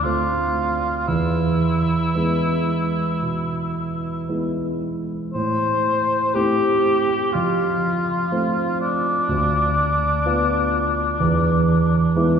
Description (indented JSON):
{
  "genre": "classical, romantic duo for cor anglais and grand piano",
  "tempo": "55-64 BPM",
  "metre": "4/4",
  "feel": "rubato",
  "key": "unclear",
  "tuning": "A4 = 439 Hz",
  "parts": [
    { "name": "mellow cor anglais", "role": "melody", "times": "0.0-12.4 s", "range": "D4 to C5", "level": "-21 LUFS", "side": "left 1 dB", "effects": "none" },
    { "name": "warm grand piano", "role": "accompaniment", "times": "0.0-12.4 s", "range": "D2 to F4", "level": "-21 LUFS", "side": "right 1 dB", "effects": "none" }
  ],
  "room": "wet church reverb, RT60 3.5 s",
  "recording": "heard from further back in the room",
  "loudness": "-18 LUFS",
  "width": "side -7 dB against mid",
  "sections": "0.0-12.4 A section",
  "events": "none",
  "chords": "0.0 Dm7; 1.1 E; 5.3 Am; 7.3 F; 9.3 Bdim/D; 11.2 E"
}